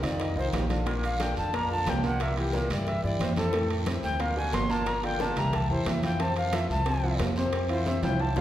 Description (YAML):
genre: Afro-Cuban jazz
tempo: 180 BPM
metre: 4/4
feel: straight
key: F major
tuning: A4 = 445 Hz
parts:
  - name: alto recorder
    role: melody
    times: 0.0-8.4 s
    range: G4 to C6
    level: -31 LUFS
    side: equal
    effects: none
  - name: warm upright piano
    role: accompaniment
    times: 0.0-8.4 s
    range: A2 to C5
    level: -31 LUFS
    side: equal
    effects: none
  - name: upright bass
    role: bass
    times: 0.0-8.4 s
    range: G1 to G2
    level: -30 LUFS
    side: equal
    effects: none
  - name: bongos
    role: percussion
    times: 0.0-8.4 s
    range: none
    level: -39 LUFS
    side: left 4 dB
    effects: none
  - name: congas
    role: percussion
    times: 0.0-8.4 s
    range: none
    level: -36 LUFS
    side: left 1 dB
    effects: none
  - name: guiro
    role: percussion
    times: 0.0-8.4 s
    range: none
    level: -43 LUFS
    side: right 2 dB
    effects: none
  - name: timbales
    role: percussion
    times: 0.0-8.4 s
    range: none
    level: -36 LUFS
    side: right 4 dB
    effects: none
room: wet recital hall reverb, RT60 1.5 s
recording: recorded in a church or concert hall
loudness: -25 LUFS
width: side -12 dB against mid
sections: 0.0-8.4 A section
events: recorder solo 0.0-8.4; drum fill 2.9-3.5, 7.9-8.4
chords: 0.2 F5; 0.9 Bbadd9; 2.2 C7; 3.5 Fmaj7; 4.2 Daug; 4.9 Gm7; 5.5 C; 6.2 Fmaj7